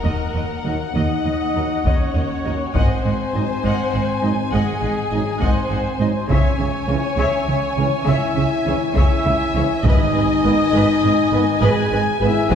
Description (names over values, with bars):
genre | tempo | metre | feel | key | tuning
cinematic, epic orchestral film score | 68 BPM (dotted quarters) | 12/8 | straight | unclear | A4 = 441 Hz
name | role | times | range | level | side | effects
warm symphonic violin section | melody | 0.0-12.6 s | F#5 to G#5 | -29 LUFS | left 3 dB | none
rich symphonic violin section | second line | 0.0-12.6 s | G#4 to G#5 | -28 LUFS | left 3 dB | none
mellow French horn section | sustained chords | 0.0-12.6 s | G#3 to G#4 | -24 LUFS | left 2 dB | none
warm trumpet section | stabs | 0.0-12.6 s | G#4 to G#5 | -27 LUFS | equal | none
dark symphonic cello section | bass | 0.0-12.6 s | D#2 to C#3 | -24 LUFS | right 3 dB | none
rich symphonic double bass section | bass | 0.0-12.6 s | G#1 to D#2 | -24 LUFS | right 2 dB | none
sub drop | sound effects | 0.0-2.7 s | none | -37 LUFS | left 1 dB | none
warm symphonic viola section | accompaniment | 0.1-12.6 s | A#4 to F#5 | -27 LUFS | equal | none
bright trombone section | sustained chords | 0.6-12.3 s | D#3 to D#4 | -30 LUFS | right 2 dB | none
taiko ensemble | drums | 1.9-12.6 s | none | -20 LUFS | left 1 dB | none
timpani | percussion | 9.8-10.7 s | G#2 | -26 LUFS | equal | none
room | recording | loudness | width
wet scoring stage reverb, RT60 1.9 s | heard from further back in the room | -16 LUFS | side -8 dB against mid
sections
0.0-12.6 A section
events
impact 0.0-2.8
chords
0.0 D#m; 2.8 G#7; 6.3 C#m; 9.9 G#m